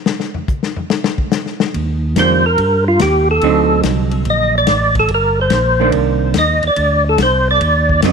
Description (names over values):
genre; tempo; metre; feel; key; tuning
soul jazz organ trio; 143 BPM; 4/4; swing 68% on 8ths; unclear; A4 = 436 Hz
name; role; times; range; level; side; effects
warm soul drum kit; drums; 0.1-8.1 s; hi-hat, kick drum, ride cymbal, snare drum, toms; -20 LUFS; left 5 dB; none
tonewheel organ; bass; 1.7-8.1 s; G1 to G2; -17 LUFS; right 1 dB; chorus vibrato, slow rotary speaker
percussive tonewheel organ; melody; 2.2-8.0 s; F4 to Eb5; -14 LUFS; equal; slow rotary speaker, chorus vibrato, tape echo
vintage hollow-body jazz guitar; accompaniment; 2.2-8.1 s; D3 to Eb4; -18 LUFS; right 14 dB; none
room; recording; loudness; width
light reverb, small room reverb; 1960s-style stereo; -12 LUFS; side -5 dB against mid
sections
0.0-8.1 A section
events
tonewheel organ solo 0.0-8.1; drum solo 0.0-1.7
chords
0.0 N.C.; 1.7 Ebmaj7; 3.4 D7b9; 5.1 Gm; 5.9 Cm9; 6.8 D7b9